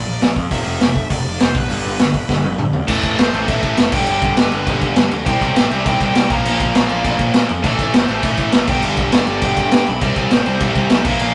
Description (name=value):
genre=punk rock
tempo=202 BPM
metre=4/4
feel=straight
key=C major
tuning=A4 = 440 Hz
part: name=dark smooth lead guitar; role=melody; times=0.0-11.3 s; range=B4 to B5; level=-27 LUFS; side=equal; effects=overdrive, tape echo
part: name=distorted electric guitar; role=riff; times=0.0-11.3 s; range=F2 to C4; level=-29 LUFS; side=equal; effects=none
part: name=tight distorted guitar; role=riff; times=0.0-11.3 s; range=F2 to C4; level=-27 LUFS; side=equal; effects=none
part: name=fuzz picked electric bass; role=bass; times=0.0-11.3 s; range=F1 to Bb2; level=-25 LUFS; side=equal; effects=overdrive
part: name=raw garage drum kit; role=drums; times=0.2-11.3 s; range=crash cymbal, hi-hat, kick drum, snare drum, toms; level=-19 LUFS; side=equal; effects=none
part: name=heavy high-gain guitar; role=riff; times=2.9-11.3 s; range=G2 to C4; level=-26 LUFS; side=equal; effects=distortion
room=light reverb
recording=rough rehearsal-room recording, warm saturation, nothing above 10.9 kHz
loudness=-16 LUFS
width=mono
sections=0.0-2.9 A section; 2.9-11.3 B section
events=drum fill 2.3-2.9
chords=0.0 Bb; 0.5 F5; 1.6 G; 2.9 Am; 3.9 G; 5.3 C; 6.3 Bb; 7.6 Am; 8.7 G5; 10.0 C